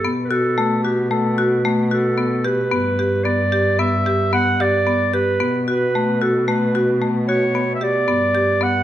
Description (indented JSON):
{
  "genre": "contemporary instrumental, chamber music in an uneven meter",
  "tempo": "112 BPM",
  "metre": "5/4",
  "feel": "straight",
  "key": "B minor",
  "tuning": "A4 = 441 Hz",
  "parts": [
    { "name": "warm clarinet", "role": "melody", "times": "0.0-8.8 s", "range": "G4 to F#5", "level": "-21 LUFS", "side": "right 2 dB", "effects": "none" },
    { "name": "marimba with hard mallets", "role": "arpeggios", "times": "0.0-8.8 s", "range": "A3 to G4", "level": "-19 LUFS", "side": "left 1 dB", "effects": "none" },
    { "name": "muted cello", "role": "bass", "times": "0.0-8.8 s", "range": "G2 to B2", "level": "-24 LUFS", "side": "left 1 dB", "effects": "none" }
  ],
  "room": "moderate recital hall reverb, RT60 1.4 s",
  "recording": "minimal, uncompressed stereo recording",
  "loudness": "-16 LUFS",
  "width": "side -12 dB against mid",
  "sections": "0.0-8.8 A section",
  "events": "none",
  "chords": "0.1 B5; 2.7 G; 5.4 B5; 8.1 Gmaj7",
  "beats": "| 0.05 0.58 1.12 1.66 2.19 | 2.73 3.26 3.80 4.33 4.87 | 5.40 5.94 6.47 7.01 7.55 | 8.09 8.62"
}